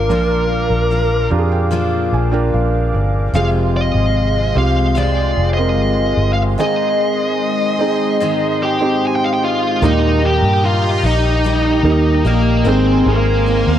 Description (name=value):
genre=pop ballad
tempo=74 BPM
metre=4/4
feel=straight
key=Eb major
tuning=A4 = 438 Hz
part: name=high-gain lead guitar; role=melody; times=0.0-13.8 s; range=Bb3 to Ab5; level=-18 LUFS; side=equal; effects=distortion
part: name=felt-muted upright piano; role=accompaniment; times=0.0-13.8 s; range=Ab2 to Bb5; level=-20 LUFS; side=right 5 dB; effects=none
part: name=sweeping resonant pad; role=sustained chords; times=0.0-13.8 s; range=Ab3 to D6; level=-24 LUFS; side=left 2 dB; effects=chorus
part: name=picked steel-string acoustic guitar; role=arpeggios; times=0.0-13.8 s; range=F2 to Bb4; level=-23 LUFS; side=left 5 dB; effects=none
part: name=vintage muted fingered electric bass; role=bass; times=0.0-13.8 s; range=F1 to G2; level=-17 LUFS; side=equal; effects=none
room=light reverb, small room reverb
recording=dark, warm production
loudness=-13 LUFS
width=side -10 dB against mid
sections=0.0-9.8 A section; 9.8-13.8 B section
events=felt piano fill 0.9-3.3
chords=0.0 Bb; 3.3 Fm; 6.6 Ab; 9.8 Eb; 12.7 Abadd9